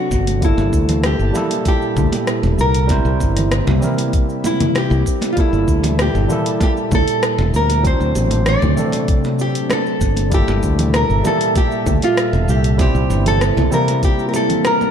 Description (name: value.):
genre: sunset chillout.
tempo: 97 BPM.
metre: 4/4.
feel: straight.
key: G dorian.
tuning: A4 = 440 Hz.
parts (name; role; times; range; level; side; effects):
nylon-string guitar; melody; 0.0-14.9 s; E4 to D5; -20 LUFS; right 1 dB; tape echo.
overdriven tine electric piano; accompaniment; 0.0-14.9 s; F#3 to E5; -23 LUFS; moving between left 7 dB and right 8 dB; auto-pan, tape echo.
ethereal airy pad; sustained chords; 0.0-14.9 s; Bb2 to A5; -23 LUFS; equal; ensemble chorus, built-in reverb.
modern bright fingered electric bass; bass; 0.1-13.7 s; E1 to D2; -17 LUFS; equal; none.
electronic kick drum; drums; 0.1-14.2 s; none; -18 LUFS; equal; none.
smooth R&B drum kit; drums; 0.1-14.9 s; cabasa, congas, hi-hat, rim click; -24 LUFS; left 1 dB; none.
congas; percussion; 0.1-14.9 s; none; -26 LUFS; right 3 dB; none.
room: light reverb.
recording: dark, warm production.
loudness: -14 LUFS.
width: side -8 dB against mid.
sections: 0.0-14.9 A section.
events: none.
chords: 0.4 Gm69; 2.9 C7; 5.4 Gm69; 7.8 D7; 10.3 Gm69; 12.8 C7.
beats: | 0.42 1.04 1.66 2.28 | 2.90 3.52 4.13 4.75 | 5.37 5.99 6.61 7.23 | 7.85 8.46 9.08 9.70 | 10.32 10.94 11.56 12.18 | 12.79 13.41 14.03 14.65.